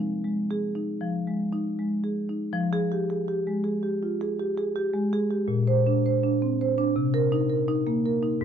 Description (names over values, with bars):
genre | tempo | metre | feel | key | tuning
classical, contemporary piece for solo marimba | 76-83 BPM | 4/4 | rubato | F dorian | A4 = 440 Hz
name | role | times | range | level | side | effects
marimba with medium hard mallets | solo | 0.0-8.4 s | Ab2 to C5 | -24 LUFS | equal | none
room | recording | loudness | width
light reverb | dark, warm production | -24 LUFS | side -8 dB against mid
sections
0.0-2.5 A section; 2.5-8.4 A section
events
none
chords
0.0 Fm7; 2.5 Fmadd9; 5.5 Bbadd9; 7.0 Cm7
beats
0.25 1.02 1.79 | 2.55 3.28 4.01 4.76 | 5.50 6.23 6.96 7.69 | 8.41